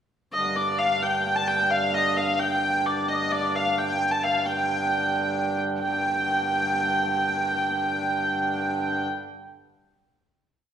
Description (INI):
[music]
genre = medieval dance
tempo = 88 BPM (dotted quarters)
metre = 6/8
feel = straight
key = unclear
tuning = A4 = 439 Hz
[part]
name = rich hurdy-gurdy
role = melody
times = 0.3-9.1 s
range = D5 to A5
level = -23 LUFS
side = equal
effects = none
[part]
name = hand-pumped harmonium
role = drone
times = 0.3-9.1 s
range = G2 to D3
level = -29 LUFS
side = right 1 dB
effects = none
[sound]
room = wet recital hall reverb, RT60 1.3 s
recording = heard from further back in the room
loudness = -22 LUFS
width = side -9 dB against mid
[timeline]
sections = 0.3-5.8 A section; 5.8-8.5 final chord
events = none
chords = none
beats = | 0.33 1.02 | 1.71 2.40 | 3.08 3.77 | 4.45 5.13 | 5.82 6.50 | 7.17 7.85